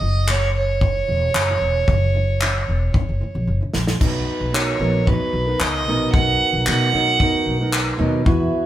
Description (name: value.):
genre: acoustic pop.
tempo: 113 BPM.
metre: 4/4.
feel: straight.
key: B major.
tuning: A4 = 440 Hz.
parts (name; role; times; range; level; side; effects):
warm violin; melody; 0.0-7.7 s; B4 to F#5; -22 LUFS; right 3 dB; none.
fingerpicked steel-string acoustic guitar; accompaniment; 0.0-8.7 s; F#2 to A#4; -24 LUFS; right 2 dB; none.
upright bass; bass; 0.0-8.5 s; E1 to B2; -22 LUFS; equal; none.
natural country drum kit; drums; 0.3-8.4 s; crash cymbal, handclaps, kick drum, snare drum; -21 LUFS; left 1 dB; none.
room: moderate stone room reverb, RT60 1.0 s.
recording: band playing live in one room.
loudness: -17 LUFS.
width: side -12 dB against mid.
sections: 0.0-4.0 A section; 4.0-8.7 B section.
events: drum fill 2.9-4.0.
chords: 0.0 F#7(no3); 4.0 Bmaj7.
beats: 0.29 0.82 1.35 | 1.88 2.42 2.95 3.48 | 4.01 4.54 5.08 5.61 | 6.14 6.67 7.20 7.74 | 8.27.